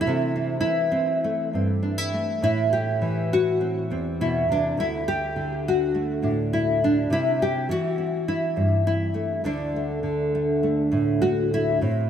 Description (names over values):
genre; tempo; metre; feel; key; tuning
folk, solo fingerstyle acoustic guitar; 102 BPM; 4/4; rubato; D mixolydian; A4 = 440 Hz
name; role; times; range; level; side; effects
nylon-string guitar; solo; 0.0-12.1 s; D2 to G4; -21 LUFS; equal; wide subtle chorus, analog delay
room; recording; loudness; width
wet plate reverb, RT60 2.9 s; dreamy mix soaked in reverb; -21 LUFS; side -9 dB against mid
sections
0.0-11.8 A section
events
none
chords
0.1 C6; 2.4 Am; 4.8 D5; 7.1 C6; 9.4 D5